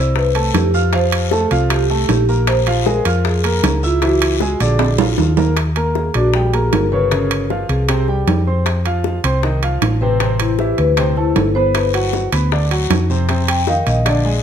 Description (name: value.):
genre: Afro-Cuban jazz.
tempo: 155 BPM.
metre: 4/4.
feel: straight.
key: unclear.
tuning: A4 = 441 Hz.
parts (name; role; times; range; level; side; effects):
marimba with soft mallets; melody; 0.0-14.2 s; E4 to G5; -20 LUFS; left 1 dB; none.
warm concert grand piano; accompaniment; 0.0-14.4 s; C3 to F6; -21 LUFS; right 2 dB; none.
hollow-body short-scale fingered electric bass; bass; 0.0-14.4 s; G1 to F2; -17 LUFS; equal; none.
bongos; percussion; 0.2-14.4 s; none; -24 LUFS; left 10 dB; none.
guiro; percussion; 0.2-5.6, 11.7-14.4 s; none; -30 LUFS; left 8 dB; none.
timbales; percussion; 0.4-14.3 s; none; -22 LUFS; right 9 dB; none.
room: light reverb.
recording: none.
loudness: -14 LUFS.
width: side -8 dB against mid.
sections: 0.0-5.6 A section; 5.6-14.4 B section.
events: drum fill 4.8-5.6; marimba solo 5.6-14.4.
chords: 0.0 C6; 0.9 F; 2.5 Bbm7; 4.0 Dbm; 4.8 Bb7; 5.6 Ebmaj7; 7.1 Gm7b5; 7.9 C5; 8.7 F5; 10.2 Am; 11.0 D5; 11.7 Gmaj7; 13.3 F5.